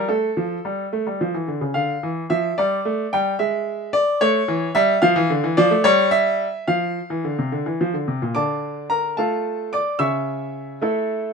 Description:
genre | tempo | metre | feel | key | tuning
classical-period piano sonatina | 73 BPM (dotted quarters) | 6/8 | straight | D minor | A4 = 439 Hz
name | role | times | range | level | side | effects
warm baby grand piano | solo | 0.0-11.3 s | Bb2 to E6 | -19 LUFS | equal | none
room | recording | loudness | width
light reverb | close, detailed microphones | -19 LUFS | side -5 dB against mid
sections
0.0-8.4 A section; 8.4-11.3 A section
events
none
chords
0.1 Fadd9; 0.9 A; 1.8 Dm; 2.6 G5; 3.4 N.C.; 4.2 A; 5.0 Dm; 5.8 N.C.; 6.7 Dm; 10.0 A/C#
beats
| 0.08 0.92 | 1.75 2.58 | 3.40 4.22 | 5.03 5.85 | 6.68 7.52 | 8.35 9.18 | 10.00 10.81

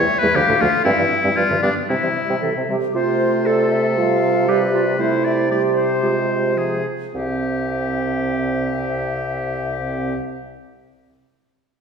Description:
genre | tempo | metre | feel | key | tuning
quick classical-period movement for wind quintet | 104-119 BPM | 2/4 | straight | C major | A4 = 440 Hz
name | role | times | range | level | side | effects
concert flute | melody | 0.0-10.2 s | Ab4 to F5 | -27 LUFS | left 6 dB | none
clear oboe | second line | 0.0-10.1 s | D4 to D5 | -22 LUFS | left 3 dB | none
dark French horn | accompaniment | 0.0-10.1 s | A2 to C4 | -27 LUFS | equal | none
warm clarinet | accompaniment | 0.0-10.1 s | D3 to A4 | -22 LUFS | right 5 dB | none
mellow bassoon | bass | 0.0-10.2 s | C2 to C3 | -22 LUFS | right 1 dB | none
room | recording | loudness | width
wet scoring stage reverb, RT60 1.6 s | recorded in a church or concert hall | -17 LUFS | side -6 dB against mid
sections
0.0-2.9 A section; 2.9-7.1 B section; 7.1-9.4 C section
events
slowing down 4.5-7.1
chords
0.3 Dm; 0.9 C/G (rootless); 1.4 G7; 1.9 C; 2.9 F/C; 4.0 G7/C; 5.0 C; 6.0 Fm/C; 7.1 C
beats
0.34 | 0.85 1.37 | 1.89 2.42 | 2.95 3.46 | 3.98 4.49 | 4.99 5.50 | 6.03 6.57 | 7.14 7.71 | 8.27 8.83

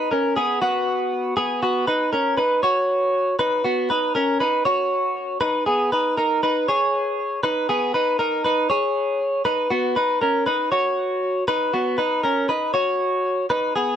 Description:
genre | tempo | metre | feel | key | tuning
indie pop | 119 BPM | 4/4 | straight | B major | A4 = 440 Hz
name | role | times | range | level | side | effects
direct-recorded clean electric guitar | solo | 0.0-14.0 s | B3 to C#5 | -19 LUFS | equal | lush chorus
room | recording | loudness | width
moderate studio reverb, RT60 0.7 s | dark, warm production | -19 LUFS | side -9 dB against mid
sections
0.0-1.6 A section; 1.6-9.7 B section; 9.7-14.0 C section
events
none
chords
0.0 F#sus4; 1.6 Bsus2; 5.7 G#madd9; 9.7 Bsus2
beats
0.11 0.62 1.12 | 1.63 2.13 2.63 3.14 | 3.64 4.15 4.65 5.16 | 5.66 6.17 6.67 7.18 | 7.68 8.19 8.69 9.20 | 9.70 10.21 10.71 11.22 | 11.72 12.23 12.73 13.24 | 13.74

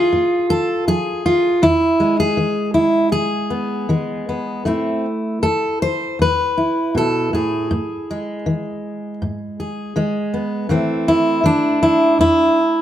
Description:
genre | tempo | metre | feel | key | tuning
folk, solo fingerstyle acoustic guitar | 80 BPM | 4/4 | rubato | A harmonic minor | A4 = 440 Hz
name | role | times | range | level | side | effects
fingerpicked steel-string acoustic guitar | solo | 0.0-12.8 s | E2 to C5 | -16 LUFS | equal | none
room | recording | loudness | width
moderate large studio reverb, RT60 0.9 s | none | -16 LUFS | side -11 dB against mid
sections
0.0-12.8 A section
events
none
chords
0.0 Dm (rootless); 1.6 E; 4.7 Am; 7.7 E/G#; 10.7 Am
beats
0.14 0.88 | 1.62 2.37 3.11 3.88 | 4.66 5.43 6.20 6.96 | 7.71 8.46 9.21 9.96 | 10.70 11.45 12.20

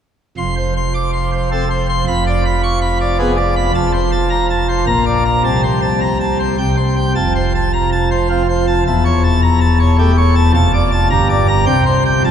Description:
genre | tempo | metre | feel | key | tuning
classical, organ toccata | 106 BPM | 3/4 | straight | F major | A4 = 440 Hz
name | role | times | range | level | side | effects
pipe organ, plenum | solo | 0.4-12.3 s | E1 to D6 | -12 LUFS | equal | none
room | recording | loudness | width
wet cathedral reverb, RT60 4.8 s | minimal, uncompressed stereo recording | -12 LUFS | side -8 dB against mid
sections
0.4-12.3 A section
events
none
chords
0.4 F; 2.1 Fdim7; 3.7 F; 4.9 Bb; 5.4 Am/C; 6.6 C5; 7.2 F; 8.9 A7/E; 10.6 Dm/F; 11.1 Gm; 11.7 C5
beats
| 0.38 0.95 1.51 | 2.07 2.63 3.19 | 3.75 4.31 4.87 | 5.44 6.01 6.58 | 7.16 7.73 8.29 | 8.86 9.43 9.99 | 10.55 11.11 11.67 | 12.24

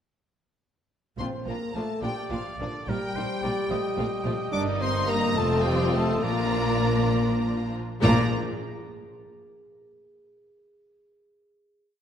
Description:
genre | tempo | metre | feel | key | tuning
quick classical-period movement for symphony orchestra | 66-74 BPM (dotted quarters) | 6/8 | rubato | Bb major | A4 = 440 Hz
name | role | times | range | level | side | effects
rich studio violin section | melody | 1.2-8.4 s | D5 to D6 | -33 LUFS | left 2 dB | none
dark clarinet | second line | 1.2-8.3 s | D4 to D5 | -32 LUFS | right 1 dB | none
rich studio violin section | second line | 1.2-8.4 s | Bb3 to F4 | -35 LUFS | left 2 dB | none
rich studio viola section | accompaniment | 1.2-8.3 s | F3 to C4 | -33 LUFS | right 1 dB | none
dark French horn section | sustained chords | 1.2-8.3 s | D3 to D4 | -30 LUFS | left 4 dB | none
dark symphonic cello section | bass | 1.2-8.4 s | F2 to Bb2 | -31 LUFS | right 2 dB | none
warm studio double bass section | bass | 1.2-8.4 s | F1 to Bb1 | -31 LUFS | right 2 dB | none
timpani | percussion | 1.2-2.0, 8.0-8.3 s | Bb2 | -31 LUFS | left 1 dB | none
clear oboe | second line | 2.0-8.3 s | Bb4 to Eb5 | -35 LUFS | right 2 dB | none
room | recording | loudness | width
wet scoring stage reverb, RT60 1.9 s | lossy compression artefacts | -23 LUFS | side -8 dB against mid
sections
1.2-8.0 A section; 8.0-9.8 final chord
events
none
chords
1.2 Bb; 2.9 Cm7/Bb; 3.7 F/Bb; 4.5 Eb/G; 5.4 F5; 6.2 Bb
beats
| 1.19 2.02 | 2.89 3.70 | 4.52 5.36 | 6.23 7.13 | 8.03

